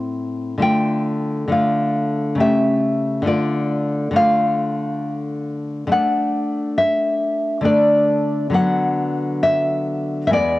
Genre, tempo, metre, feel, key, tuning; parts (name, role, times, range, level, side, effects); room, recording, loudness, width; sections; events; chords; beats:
romantic piece for solo classical guitar; 68 BPM; 3/4; rubato; A4 = 440 Hz
nylon-string guitar; solo; 0.0-10.6 s; E2 to G5; -17 LUFS; left 1 dB
moderate lush hall reverb, RT60 2.6 s; home recording on cassette; -17 LUFS; side -17 dB against mid
0.0-10.6 A section
0.0 Am; 0.6 Dm; 2.4 A7/C#; 3.3 Dm; 5.9 D; 8.6 Bm/D
| 0.64 1.54 2.41 | 3.28 4.18 5.08 | 5.94 6.79 7.67 | 8.55 9.45 10.34